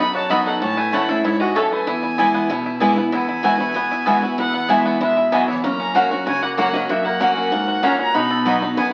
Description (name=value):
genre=bluegrass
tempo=191 BPM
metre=4/4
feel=straight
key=E major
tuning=A4 = 439 Hz
part: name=bluegrass banjo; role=melody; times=0.0-8.9 s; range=A3 to A4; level=-28 LUFS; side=equal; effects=none
part: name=clear fiddle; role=melody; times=0.0-8.9 s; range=C#5 to B5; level=-25 LUFS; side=equal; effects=none
part: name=lap resonator guitar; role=second line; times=0.0-8.9 s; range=E3 to D#5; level=-28 LUFS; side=equal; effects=none
part: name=picked steel-string acoustic guitar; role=accompaniment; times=0.0-8.9 s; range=E2 to F#4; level=-25 LUFS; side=equal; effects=none
part: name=mandolin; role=stabs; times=0.3-8.6 s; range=A3 to B5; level=-23 LUFS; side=equal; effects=none
room=wet large studio reverb, RT60 1.0 s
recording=very old 78 rpm record, vinyl crackle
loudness=-19 LUFS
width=mono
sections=0.0-3.1 A section; 3.1-8.9 A section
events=none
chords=0.0 B; 0.6 A; 1.9 E; 3.1 Eadd9; 5.6 F#; 8.2 B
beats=0.30 | 0.61 0.93 1.24 1.56 | 1.87 2.19 2.50 2.81 | 3.13 3.44 3.76 4.07 | 4.38 4.70 5.01 5.33 | 5.64 5.95 6.27 6.58 | 6.89 7.21 7.52 7.84 | 8.15 8.46 8.78